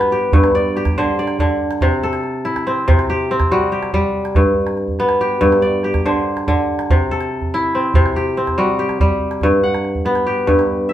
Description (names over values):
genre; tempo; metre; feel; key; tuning
west african traditional, West African string and xylophone music; 95 BPM (dotted quarters); 12/8; straight; G major; A4 = 440 Hz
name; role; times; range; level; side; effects
kora; arpeggios; 0.0-10.9 s; G2 to F#5; -16 LUFS; equal; none
calabash; percussion; 0.0-10.9 s; none; -18 LUFS; right 1 dB; none
room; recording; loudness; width
wet studio reverb, RT60 0.8 s; band playing live in one room; -14 LUFS; side -12 dB against mid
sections
0.0-9.4 A section; 9.4-10.9 B section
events
none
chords
0.0 G; 1.8 C; 4.4 G; 6.9 C; 9.4 G